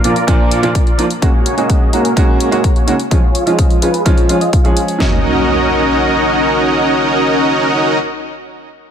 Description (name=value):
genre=EDM, festival progressive house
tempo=127 BPM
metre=4/4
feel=straight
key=Eb minor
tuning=A4 = 439 Hz
part: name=clear baby grand piano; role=accompaniment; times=0.0-8.0 s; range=Bb2 to Ab4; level=-18 LUFS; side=right 2 dB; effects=sidechain pumping, ping-pong delay
part: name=dense compressed supersaw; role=riff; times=0.0-8.0 s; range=Bb3 to F5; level=-14 LUFS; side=equal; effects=sidechain pumping, low-pass filter, ping-pong delay
part: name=electronic hi-hat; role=drums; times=0.0-5.0 s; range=none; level=-24 LUFS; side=left 4 dB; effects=none
part: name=big-room dance drum kit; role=drums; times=0.3-5.1 s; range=kick drum, snare drum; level=-12 LUFS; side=equal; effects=none
part: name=impact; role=sound effects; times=5.0-8.0 s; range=none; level=-23 LUFS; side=equal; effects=none
room=light reverb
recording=none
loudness=-11 LUFS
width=side -8 dB against mid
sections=0.0-5.0 A section; 5.0-8.8 B section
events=filter sweep on supersaw synth 0.0-5.0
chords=0.0 Bb; 1.2 Gbadd9; 3.1 Db; 5.0 Ebm7